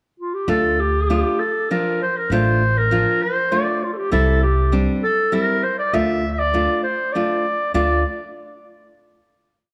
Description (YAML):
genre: klezmer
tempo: 100 BPM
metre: 3/4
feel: straight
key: D minor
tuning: A4 = 439 Hz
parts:
  - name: warm clarinet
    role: melody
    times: 0.2-8.0 s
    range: F4 to E5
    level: -22 LUFS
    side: equal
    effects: none
  - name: nylon-string guitar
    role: accompaniment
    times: 0.5-8.0 s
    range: F3 to F4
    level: -25 LUFS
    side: equal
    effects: none
  - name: upright bass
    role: bass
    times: 0.5-8.0 s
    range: A1 to D2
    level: -23 LUFS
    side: equal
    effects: none
room: moderate echo chamber reverb, RT60 1.9 s, small room reverb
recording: none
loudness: -19 LUFS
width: mono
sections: 0.0-0.5 pickup bar; 0.5-7.7 A section; 7.7-9.5 final chord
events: none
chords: 0.5 Dm; 4.1 C; 5.9 Dm